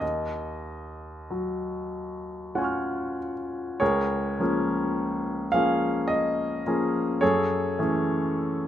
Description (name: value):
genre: classical, impressionist solo piano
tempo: 45-54 BPM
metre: 3/4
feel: rubato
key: Db major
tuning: A4 = 441 Hz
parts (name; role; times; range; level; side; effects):
- clear baby grand piano; solo; 0.0-8.7 s; Db2 to F6; -25 LUFS; equal; none
room: moderate recital hall reverb, RT60 1.5 s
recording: close, detailed microphones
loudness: -24 LUFS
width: side -11 dB against mid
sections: 0.0-3.8 A section; 3.8-8.7 B section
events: none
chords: 0.0 Ebm11; 3.8 Db6; 7.2 Gbm9